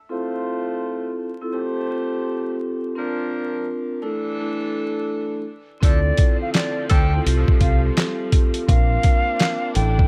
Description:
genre	hip hop, boom-bap hip-hop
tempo	84 BPM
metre	4/4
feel	swing 63% on 16ths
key	D minor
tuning	A4 = 438 Hz
part	vibraphone with soft mallets	accompaniment	0.1-10.1 s	A3 to Bb4	-28 LUFS	equal	high-pass filter, low-pass filter
part	clear saxophone section	stabs	0.1-7.1 s	E3 to C5	-34 LUFS	equal	high-pass filter, low-pass filter, tape echo
part	hollow concert flute	melody	5.8-10.1 s	D5 to G5	-27 LUFS	equal	high-pass filter, low-pass filter
part	rich studio string section	sustained chords	5.8-10.1 s	D3 to E4	-36 LUFS	equal	high-pass filter, low-pass filter
part	deep dub fingered electric bass	bass	5.8-10.0 s	A1 to D2	-22 LUFS	equal	none
part	boom bap sampler-style drum kit	drums	5.8-10.1 s	handclaps, hi-hat, kick drum, snare drum	-19 LUFS	equal	none
room	little or no reverb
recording	vinyl crackle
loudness	-21 LUFS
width	mono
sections	0.0-5.8 A section; 5.8-10.1 B section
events	filter sweep 0.0-5.8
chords	0.1 Fmaj7/A; 1.5 Fadd9; 3.0 Bbadd9; 4.0 Asus4; 5.8 Dm7; 7.3 Fadd9/C; 8.7 Bbadd9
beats	| 0.11 0.83 1.54 2.26 | 2.97 3.69 4.40 5.11 | 5.83 6.54 7.26 7.97 | 8.69 9.40

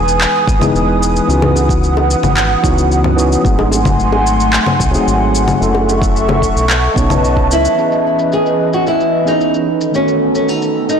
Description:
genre	sunset chillout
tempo	111 BPM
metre	4/4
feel	straight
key	unclear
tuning	A4 = 440 Hz
part	bright tine electric piano	accompaniment	0.0-11.0 s	D#3 to D#5	-18 LUFS	equal	auto-pan, low-pass filter, ping-pong delay
part	airy breathy pad	sustained chords	0.0-11.0 s	D#3 to D#6	-16 LUFS	right 1 dB	chorus
part	round analog bass	bass	0.0-7.7 s	E1 to C#2	-16 LUFS	equal	none
part	electronic shaker, handclaps and congas	drums	0.1-11.0 s	none	-18 LUFS	left 3 dB	overdrive, low-pass filter on perc, low-pass filter on snare
part	electronic kick drum	drums	0.5-7.5 s	none	-17 LUFS	equal	overdrive
part	bongos	percussion	1.4-6.4 s	none	-22 LUFS	left 3 dB	none
part	nylon-string guitar	melody	7.5-11.0 s	C#4 to G#4	-14 LUFS	right 1 dB	digital delay
room	wet lush hall reverb, RT60 1.7 s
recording	blown-out, overdriven recording, overdrive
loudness	-11 LUFS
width	side -7 dB against mid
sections	0.0-7.8 A section; 7.8-11.0 B section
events	filter sweep on tine electric piano 7.8-11.0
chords	0.0 Emaj7; 1.3 C#m11; 3.5 G#7b9; 5.6 F#m7; 6.7 B9; 7.8 C#m9; 9.7 B9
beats	0.21 0.75 | 1.29 1.83 2.37 2.91 | 3.45 3.99 4.53 5.07 | 5.61 6.15 6.69 7.23 | 7.78 8.31 8.86 9.40 | 9.94 10.48

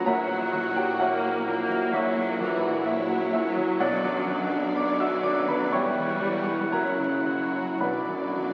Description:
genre	classical, romantic movement for piano and orchestra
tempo	52-65 BPM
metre	4/4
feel	rubato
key	unclear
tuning	A4 = 440 Hz
part	rich studio violin section	melody	0.0-8.5 s	A#4 to D5	-42 LUFS	equal	none
part	warm grand piano	melody	0.0-8.5 s	A#1 to E6	-29 LUFS	equal	none
part	clear oboe	second line	0.0-8.5 s	A#4 to F#5	-38 LUFS	equal	none
part	rich studio violin section	second line	0.0-8.5 s	C#4 to F#4	-39 LUFS	equal	none
part	clear studio viola section	accompaniment	0.0-8.5 s	E3 to A#3	-34 LUFS	equal	none
part	mellow French horn section	sustained chords	0.0-8.5 s	F#3 to E4	-37 LUFS	equal	none
part	clear tuba	bass	0.0-8.5 s	E1 to B1	-39 LUFS	equal	none
part	rich studio cello section	bass	0.0-8.5 s	E2 to B2	-39 LUFS	equal	none
part	rich studio double bass section	bass	0.0-8.5 s	E1 to B1	-50 LUFS	equal	none
part	mellow concert flute	second line	0.1-8.3 s	D5 to F#5	-42 LUFS	equal	none
part	warm clarinet	second line	0.1-8.3 s	B4 to E5	-40 LUFS	equal	none
part	warm bassoon	accompaniment	0.1-8.3 s	F#3 to G3	-38 LUFS	equal	none
part	timpani	percussion	3.8-8.5 s	B2	-49 LUFS	equal	none
room	wet scoring stage reverb, RT60 2.0 s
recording	very old 78 rpm record, vinyl crackle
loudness	-26 LUFS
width	mono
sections	0.0-8.5 A section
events	none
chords	0.1 F#7/A#; 3.8 Bm; 5.7 C#dim/E; 6.7 F#7; 7.8 Bm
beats	| 0.07 1.00 1.93 2.86 | 3.80 4.76 5.72 6.72 | 7.80

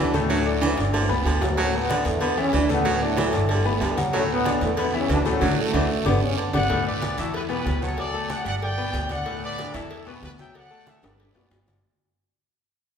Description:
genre	latin, salsa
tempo	187 BPM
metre	4/4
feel	straight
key	D major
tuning	A4 = 440 Hz
part	dark trombone section	melody	0.0-6.6 s	F#2 to D4	-25 LUFS	right 1 dB	none
part	edgy baritone saxophone	second line	0.0-6.5 s	D3 to F#3	-28 LUFS	right 4 dB	none
part	bright concert grand piano	accompaniment	0.0-11.8 s	A2 to B5	-28 LUFS	left 4 dB	none
part	upright bass	bass	0.0-11.8 s	F#1 to E2	-27 LUFS	equal	none
part	agogo bells and timbales	percussion	0.1-11.7 s	none	-32 LUFS	right 2 dB	none
part	congas	percussion	0.1-11.8 s	none	-33 LUFS	equal	none
part	guiro	percussion	0.1-11.8 s	none	-38 LUFS	right 6 dB	none
part	cowbell and bongos	percussion	0.3-11.8 s	none	-35 LUFS	left 2 dB	none
part	clear trumpet section	melody	6.5-11.7 s	E4 to G5	-29 LUFS	left 1 dB	none
room	wet recital hall reverb, RT60 1.5 s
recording	recorded in a church or concert hall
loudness	-21 LUFS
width	side -7 dB against mid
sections	0.0-6.7 A section; 6.7-11.8 B section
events	drum fill 0.3-1.6, 6.1-6.7, 11.0-11.8; band accent 5.4-6.7; fade-out 6.7-11.8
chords	0.3 D; 0.9 G; 1.6 D; 2.2 E5; 2.9 D; 3.5 G; 4.1 D; 4.8 E5; 5.4 D; 6.1 G; 6.7 D; 7.3 Em7; 8.0 D; 8.6 G; 9.3 D5; 9.9 Em7; 10.5 D; 11.2 G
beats	| 0.30 0.62 0.94 1.26 | 1.58 1.90 2.22 2.54 | 2.86 3.18 3.50 3.82 | 4.14 4.46 4.78 5.10 | 5.42 5.74 6.06 6.38 | 6.70 7.02 7.34 7.66 | 7.98 8.30 8.62 8.94 | 9.26 9.58 9.90 10.23 | 10.55 10.87 11.19 11.51

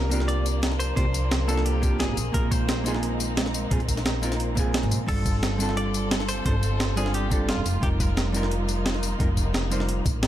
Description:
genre	liquid drum and bass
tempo	175 BPM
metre	4/4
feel	straight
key	G minor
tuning	A4 = 440 Hz
part	direct-recorded clean electric guitar	melody	0.0-3.0, 5.1-8.5 s	F4 to D5	-34 LUFS	equal	dub echo
part	hollow-body jazz guitar	accompaniment	0.0-10.0 s	G3 to C5	-30 LUFS	right 2 dB	tape echo
part	rich chamber string section	sustained chords	0.0-10.3 s	F3 to A4	-33 LUFS	left 1 dB	sidechain pumping
part	upright bass	bass	0.0-10.3 s	F1 to C2	-26 LUFS	equal	none
part	breakbeat sampler-style drum kit	drums	0.1-10.3 s	crash cymbal, hi-hat, snare drum, tambourine	-29 LUFS	equal	studio ambience
part	electronic kick drum	drums	1.0-10.1 s	none	-26 LUFS	equal	studio ambience
room	light reverb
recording	none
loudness	-22 LUFS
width	side -12 dB against mid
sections	0.0-10.3 A section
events	none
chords	0.0 C9sus4; 2.2 Bb9sus4; 5.1 G9sus4; 7.7 F9sus4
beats	0.29 0.63 | 0.97 1.31 1.66 2.00 | 2.34 2.69 3.03 3.37 | 3.71 4.06 4.40 4.74 | 5.09 5.43 5.77 6.11 | 6.46 6.80 7.14 7.49 | 7.83 8.17 8.51 8.86 | 9.20 9.54 9.89 10.23

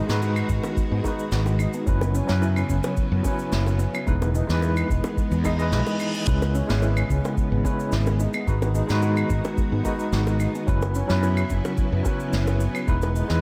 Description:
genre	sunset chillout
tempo	109 BPM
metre	4/4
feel	straight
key	unclear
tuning	A4 = 440 Hz
part	overdriven tine electric piano	accompaniment	0.0-13.4 s	E3 to D#5	-30 LUFS	equal	fast tremolo, digital delay
part	soft string machine	sustained chords	0.0-13.4 s	C#3 to F#4	-34 LUFS	equal	ensemble chorus
part	steel pan	arpeggios	0.0-13.2 s	B3 to F#4	-36 LUFS	equal	digital delay
part	mellow fretless electric bass	bass	0.1-13.4 s	E1 to G#2	-25 LUFS	equal	none
part	cabasa, snare drum and claves	drums	0.1-13.4 s	none	-35 LUFS	equal	none
part	bongos	percussion	0.2-13.1 s	none	-36 LUFS	equal	none
part	electronic kick drum	drums	0.5-13.0 s	none	-28 LUFS	equal	overdrive
part	reverse cymbal	sound effects	5.5-6.3 s	none	-36 LUFS	equal	none
room	light reverb, small room ambience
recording	none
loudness	-23 LUFS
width	mono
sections	0.0-13.4 A section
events	reverse cymbal 5.5-6.3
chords	0.0 G#m7; 1.9 F#7sus4; 4.1 Emaj7; 6.3 C#m7; 8.2 G#m7; 10.7 F#7sus4; 12.9 Emaj7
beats	0.22 0.77 1.32 | 1.87 2.42 2.97 3.52 | 4.07 4.62 5.17 5.72 | 6.28 6.83 7.38 7.93 | 8.48 9.03 9.58 10.13 | 10.68 11.23 11.78 12.33 | 12.88

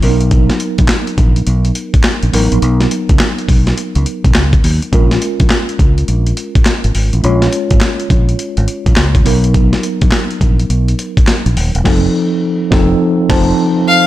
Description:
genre	R&B, new jack swing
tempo	104 BPM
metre	4/4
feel	swing 64% on 16ths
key	unclear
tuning	A4 = 440 Hz
part	mellow tine electric piano	accompaniment	0.0-14.1 s	F3 to A5	-16 LUFS	right 1 dB	medium stereo tremolo
part	fingered electric bass	bass	0.0-13.5 s	D#1 to D#2	-13 LUFS	equal	none
part	breakbeat sampler-style drum kit	drums	0.0-13.5 s	crash cymbal, handclaps, hi-hat, kick drum, snare drum	-13 LUFS	equal	vintage 12-bit sampler grit
part	rich violin	melody	13.9-14.1 s	F5	-7 LUFS	left 1 dB	none
room	digital ambience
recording	none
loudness	-10 LUFS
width	side -15 dB against mid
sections	0.0-14.1 A section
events	band accent 11.9-14.1; tine electric piano fill 13.3-14.1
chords	0.0 Bmaj7; 4.9 Bbm7; 9.3 Bmaj7; 11.9 F7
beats	| 0.31 0.89 1.47 2.04 | 2.62 3.20 3.77 4.35 | 4.93 5.50 6.08 6.66 | 7.24 7.81 8.39 8.97 | 9.54 10.12 10.70 11.28 | 11.85 12.43 13.01 13.58

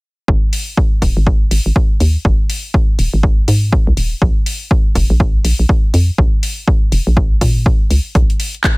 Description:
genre	deep house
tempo	122 BPM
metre	4/4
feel	swing 60% on 16ths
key	unclear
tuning	A4 = 440 Hz
part	hollow knocking FM bass	bass	0.3-8.2 s	Eb1 to Bb2	-14 LUFS	equal	tube saturation, sidechain pumping
part	electronic kick drum	drums	0.3-8.8 s	none	-13 LUFS	equal	none
part	house drum kit	drums	0.5-8.8 s	handclaps, hi-hat	-23 LUFS	left 2 dB	none
room	little or no reverb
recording	none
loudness	-12 LUFS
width	side -26 dB against mid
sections	0.3-8.8 A section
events	none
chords	none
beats	| 0.28 0.77 1.27 1.76 | 2.25 2.74 3.23 3.73 | 4.22 4.71 5.20 5.69 | 6.18 6.68 7.17 7.66 | 8.15 8.64

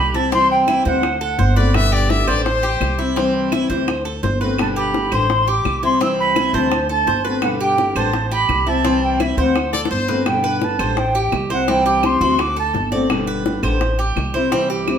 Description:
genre	latin, Cuban son and guajira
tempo	169 BPM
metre	4/4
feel	straight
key	G major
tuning	A4 = 440 Hz
part	jazz flute	melody	0.0-1.6, 4.6-12.9 s	E5 to E6	-19 LUFS	right 1 dB	none
part	Cuban tres	arpeggios	0.0-15.0 s	C4 to D5	-23 LUFS	right 2 dB	none
part	upright bass	bass	0.0-15.0 s	G1 to D2	-22 LUFS	equal	none
part	fingerpicked steel-string acoustic guitar	accompaniment	0.1-15.0 s	B2 to G4	-21 LUFS	left 2 dB	none
part	bongos	percussion	0.1-15.0 s	none	-26 LUFS	left 4 dB	none
part	claves	percussion	0.7-15.0 s	none	-30 LUFS	right 4 dB	none
part	brilliant trumpet	second line	1.6-3.1, 9.7-10.2 s	C5 to E5	-22 LUFS	left 4 dB	none
room	wet stone room reverb, RT60 0.9 s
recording	band playing live in one room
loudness	-15 LUFS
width	side -8 dB against mid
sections	0.0-10.3 A section; 10.3-15.0 B section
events	drum fill 9.7-10.3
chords	0.3 C; 1.0 D7; 1.7 G; 2.5 Am7; 3.2 C; 3.9 D7; 4.6 G; 5.3 Am7; 6.0 C; 6.7 D7; 7.4 G; 8.1 Am7; 8.8 C; 9.6 D7; 10.3 G; 11.0 Am7; 11.7 C; 12.4 D7; 13.1 G; 13.8 Am7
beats	| 0.32 0.68 1.03 1.39 | 1.74 2.10 2.46 2.81 | 3.17 3.52 3.88 4.23 | 4.59 4.94 5.30 5.65 | 6.01 6.36 6.72 7.07 | 7.43 7.78 8.14 8.49 | 8.85 9.20 9.55 9.91 | 10.27 10.62 10.97 11.33 | 11.68 12.04 12.39 12.75 | 13.10 13.46 13.81 14.17 | 14.52 14.88

